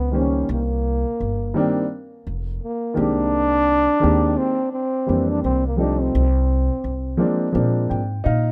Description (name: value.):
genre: hip hop, jazz-hop.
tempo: 85 BPM.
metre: 4/4.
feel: swing 64% on 16ths.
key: C minor.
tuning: A4 = 440 Hz.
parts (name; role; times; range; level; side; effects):
breathy trombone; melody; 0.0-7.4 s; Bb3 to D4; -24 LUFS; equal; analog delay.
upright bass; bass; 0.0-8.5 s; F1 to Bb2; -25 LUFS; equal; none.
dark grand piano; accompaniment; 0.1-8.5 s; Eb3 to G5; -24 LUFS; equal; none.
room: light reverb.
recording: rough home demo mix.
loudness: -21 LUFS.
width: mono.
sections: 0.0-8.5 A section.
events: grand piano fill 7.5-8.5.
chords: 0.5 Cm7; 3.0 Abmaj9/C; 5.4 C9; 6.1 F5/C; 7.5 Bb7.